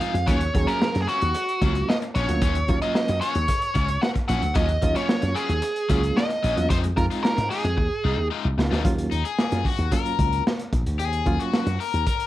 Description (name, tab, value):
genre	funk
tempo	112 BPM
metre	4/4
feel	straight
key	Eb dorian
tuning	A4 = 442 Hz
part	nasal lead guitar with a parked wah	melody	0.0-8.3 s	Gb4 to Gb5	-26 LUFS	right 1 dB	overdrive
part	crunchy overdriven guitar	accompaniment	0.0-12.3 s	Gb3 to Bb4	-30 LUFS	left 9 dB	none
part	reed electric piano	stabs	0.0-11.8 s	F3 to Ab4	-29 LUFS	right 2 dB	fast tremolo
part	crunchy breakbeat drum kit	drums	0.0-12.3 s	hi-hat, kick drum, snare drum	-25 LUFS	equal	none
part	slap bass with an envelope filter	bass	0.1-12.0 s	Bb1 to Ab2	-24 LUFS	equal	none
room	light reverb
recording	none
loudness	-21 LUFS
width	side -15 dB against mid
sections	0.0-8.8 A section; 8.8-12.3 B section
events	drum fill 7.8-8.8; overdriven electric guitar solo 8.8-12.3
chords	0.3 Ebm9; 6.7 Fm7; 8.8 Ebm9